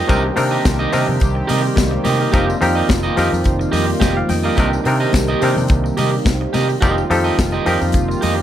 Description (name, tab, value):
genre	disco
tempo	107 BPM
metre	4/4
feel	straight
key	unclear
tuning	A4 = 439 Hz
part	electric guitar at the edge of break-up	accompaniment	0.0-8.4 s	G4 to Eb5	-22 LUFS	right 5 dB	none
part	chorused pulse-width pad	sustained chords	0.0-8.4 s	Eb3 to G4	-21 LUFS	right 1 dB	none
part	clav	accompaniment	0.1-8.4 s	C3 to G5	-21 LUFS	left 1 dB	none
part	vintage muted fingered electric bass	bass	0.1-8.4 s	F1 to C3	-21 LUFS	equal	none
part	modern studio drum kit	drums	0.1-8.4 s	hi-hat, kick drum, snare drum	-20 LUFS	equal	none
part	congas	percussion	0.1-8.4 s	none	-28 LUFS	left 5 dB	none
part	tambourine	percussion	0.1-8.4 s	none	-35 LUFS	left 7 dB	none
room	light reverb, small room ambience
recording	none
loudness	-14 LUFS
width	side -11 dB against mid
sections	0.0-8.4 A section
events	none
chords	0.1 Cm7; 2.3 F9sus4; 4.6 Cm7; 6.8 F9sus4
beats	| 0.10 0.66 1.22 1.78 | 2.34 2.90 3.46 4.02 | 4.58 5.14 5.70 6.26 | 6.82 7.38 7.94